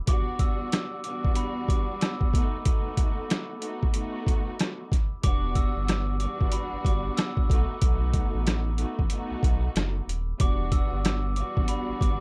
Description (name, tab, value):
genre	hip hop, boom-bap hip-hop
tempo	93 BPM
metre	4/4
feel	swing 61% on 16ths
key	E minor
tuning	A4 = 440 Hz
part	glockenspiel with soft plastic mallets	melody	0.1-12.2 s	B5 to E6	-38 LUFS	equal	high-pass filter, low-pass filter, slapback echo
part	dark studio string section	accompaniment	0.1-12.2 s	E2 to F#4	-36 LUFS	equal	high-pass filter, low-pass filter
part	boom bap sampler-style drum kit	drums	0.1-12.2 s	hi-hat, kick drum, rim click, snare drum	-27 LUFS	equal	none
part	sub bass with octave	bass	5.2-12.2 s	D#1 to B1	-31 LUFS	equal	none
room	little or no reverb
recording	dark, warm production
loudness	-27 LUFS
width	mono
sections	0.0-12.2 A section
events	break 0.1-5.2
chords	0.1 Em7; 2.3 B7; 5.2 Em7; 7.5 B7; 10.4 Em7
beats	| 0.07 0.72 1.37 2.01 | 2.66 3.30 3.95 4.59 | 5.24 5.88 6.53 7.17 | 7.82 8.46 9.11 9.75 | 10.40 11.04 11.69